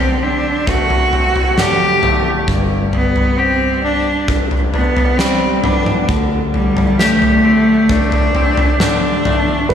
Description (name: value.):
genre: post-rock.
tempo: 66 BPM.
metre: 4/4.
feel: straight.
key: unclear.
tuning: A4 = 440 Hz.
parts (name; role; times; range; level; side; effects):
bright cello; melody; 0.0-9.7 s; G3 to G4; -16 LUFS; right 1 dB; slapback echo, digital delay.
twangy electric guitar; arpeggios; 0.0-9.7 s; G2 to G4; -20 LUFS; left 2 dB; slapback echo, digital delay.
fingered electric bass; bass; 0.0-9.7 s; G1 to D2; -23 LUFS; equal; none.
huge arena drum kit; drums; 0.7-9.7 s; kick drum, snare drum, toms; -17 LUFS; left 1 dB; none.
felt-muted upright piano; arpeggios; 9.7 s; B4; -14 LUFS; right 6 dB; none.
room: moderate lush hall reverb, RT60 2.5 s.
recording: big arena sound.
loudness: -12 LUFS.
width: side -8 dB against mid.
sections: 0.0-9.7 A section.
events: none.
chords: 0.0 D7sus4; 2.5 G; 6.1 D7sus4.